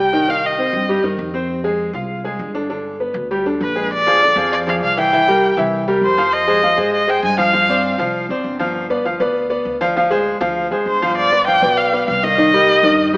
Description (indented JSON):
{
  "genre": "latin, salsa",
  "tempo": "198 BPM",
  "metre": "4/4",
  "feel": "straight",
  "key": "C minor",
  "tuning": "A4 = 437 Hz",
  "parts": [
    { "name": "clear erhu", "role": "melody", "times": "0.0-1.0, 3.6-8.0, 10.9-13.2 s", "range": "B4 to Ab5", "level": "-15 LUFS", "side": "equal", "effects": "none" },
    { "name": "bright upright piano", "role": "accompaniment", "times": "0.0-13.2 s", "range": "D3 to F5", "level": "-17 LUFS", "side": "equal", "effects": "none" },
    { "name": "upright bass", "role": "bass", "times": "0.0-13.2 s", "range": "G1 to Ab2", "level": "-27 LUFS", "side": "equal", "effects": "none" }
  ],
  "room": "wet plate reverb, RT60 2.7 s",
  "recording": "heard from further back in the room, AM radio sound",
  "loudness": "-14 LUFS",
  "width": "side -28 dB against mid",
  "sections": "0.0-3.9 A section; 3.9-13.2 B section",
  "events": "none",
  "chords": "0.3 Cm; 1.5 Fm; 2.7 G; 3.9 Bb7; 5.1 C7; 6.3 Fm7; 7.5 G7sus4; 8.7 G7; 10.0 Dm7b5; 11.2 G7; 12.4 Cm7"
}